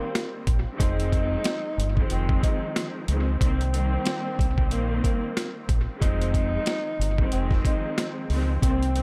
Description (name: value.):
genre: hip hop, boom-bap hip-hop.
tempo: 92 BPM.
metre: 4/4.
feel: swing 60% on 16ths.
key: unclear.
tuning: A4 = 440 Hz.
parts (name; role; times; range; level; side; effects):
breathy tenor saxophone; melody; 0.0-9.0 s; Bb3 to Eb4; -34 LUFS; equal; high-pass filter, low-pass filter, dub echo.
warm studio string section; accompaniment; 0.0-9.0 s; Eb3 to C4; -33 LUFS; equal; cassette tape, high-pass filter, low-pass filter, dub echo.
boom bap sampler-style drum kit; drums; 0.2-9.0 s; hi-hat, kick drum, snare drum; -28 LUFS; equal; none.
deep dub fingered electric bass; bass; 0.5-9.0 s; F1 to Db2; -28 LUFS; equal; none.
room: little or no reverb.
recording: echo-heavy mix.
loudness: -25 LUFS.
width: mono.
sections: 0.0-9.0 A section.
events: none.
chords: 0.0 Cm7; 0.8 Fm7; 3.4 Cm7; 6.0 Fm7.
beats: 0.14 | 0.80 1.45 2.10 2.75 | 3.41 4.06 4.71 5.36 | 6.01 6.67 7.32 7.97 | 8.62.